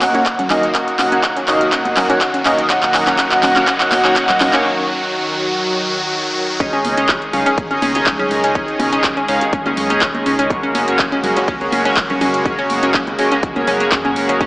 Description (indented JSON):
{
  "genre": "progressive house",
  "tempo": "123 BPM",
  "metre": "4/4",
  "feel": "straight",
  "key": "unclear",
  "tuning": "A4 = 440 Hz",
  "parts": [
    { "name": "wide unison lead", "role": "melody", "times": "0.0-4.6 s", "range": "Eb5 to Gb5", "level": "-18 LUFS", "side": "equal", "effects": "sidechain pumping, dub echo" },
    { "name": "filtered supersaw swell", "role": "sustained chords", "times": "0.0-14.5 s", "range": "Db3 to Ab4", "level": "-21 LUFS", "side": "equal", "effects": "sidechain pumping" },
    { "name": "analog pluck", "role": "arpeggios", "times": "0.0-14.5 s", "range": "Db4", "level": "-21 LUFS", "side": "equal", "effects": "chorus, sidechain pumping, dub echo" },
    { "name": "chorused polysynth", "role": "stabs", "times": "0.0-14.5 s", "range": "Bb3 to F5", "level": "-19 LUFS", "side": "equal", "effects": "cassette tape, sidechain pumping, dub echo" },
    { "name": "round analog bass", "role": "bass", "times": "0.0-14.5 s", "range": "Gb1 to Gb2", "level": "-34 LUFS", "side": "equal", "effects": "tube saturation, sidechain pumping" },
    { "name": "big-room dance drum kit", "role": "drums", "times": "0.0-14.5 s", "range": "handclaps, hi-hat", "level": "-19 LUFS", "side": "equal", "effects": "none" },
    { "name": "congas and bongos", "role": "percussion", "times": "0.0-14.3 s", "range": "none", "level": "-28 LUFS", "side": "right 1 dB", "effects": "sidechain pumping on perc" },
    { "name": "riser", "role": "sound effects", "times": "0.0-6.6 s", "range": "none", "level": "-25 LUFS", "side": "equal", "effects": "none" },
    { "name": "electronic kick drum", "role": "drums", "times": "0.3-14.5 s", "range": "none", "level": "-25 LUFS", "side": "equal", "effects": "high-pass filter on kick, high-pass filter on room" }
  ],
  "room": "wet digital room reverb, RT60 1.2 s",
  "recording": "small speaker sound",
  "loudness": "-13 LUFS",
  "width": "side -22 dB against mid",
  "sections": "0.0-6.6 A section; 6.6-14.5 B section",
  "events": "build-up 0.0-6.6; drum fill 0.0-4.7; filter sweep on analog polysynth 0.0-6.6; break 4.7-6.6; drop 6.6-14.5",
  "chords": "0.0 Ebm/Gb; 2.7 Cb; 6.6 Dbsus2; 10.5 Gbadd9"
}